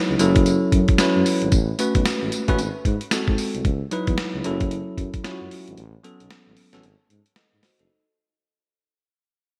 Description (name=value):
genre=R&B, new jack swing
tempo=113 BPM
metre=4/4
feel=swing 61% on 16ths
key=unclear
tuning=A4 = 439 Hz
part: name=bell-like tine electric piano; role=accompaniment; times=0.0-8.1 s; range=F#3 to D#5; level=-25 LUFS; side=equal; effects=none
part: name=mellow tuba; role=bass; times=0.1-7.9 s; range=F#1 to G#2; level=-28 LUFS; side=equal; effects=none
part: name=boom bap sampler-style drum kit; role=drums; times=0.2-7.9 s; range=hi-hat, kick drum, snare drum, tambourine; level=-24 LUFS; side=equal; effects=gated reverb
room=moderate lush hall reverb, RT60 2.0 s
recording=bright 1980s-style digital production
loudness=-21 LUFS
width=mono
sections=0.0-7.9 A section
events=fade-out 0.0-7.9; break 5.8-7.9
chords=0.2 F#m7; 1.5 A69; 2.6 G#7b9; 3.6 C#m11; 4.4 F#m7; 5.8 A69; 6.8 F#m69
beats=0.46 0.99 | 1.52 2.05 2.58 3.12 | 3.65 4.18 4.71 5.24 | 5.77 6.30 6.83 7.36